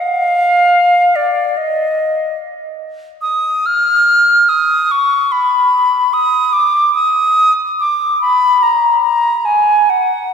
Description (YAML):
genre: classical, free, expressive piece for unaccompanied flute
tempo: 66-76 BPM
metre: 4/4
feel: rubato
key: Eb minor from 3.2 s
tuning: A4 = 443 Hz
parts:
  - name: concert flute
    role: solo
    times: 0.0-10.3 s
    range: D5 to F6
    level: -11 LUFS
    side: equal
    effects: none
room: wet church reverb, RT60 3.4 s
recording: recorded in a church or concert hall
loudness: -10 LUFS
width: side -6 dB against mid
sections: 0.0-10.3 A section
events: none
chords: none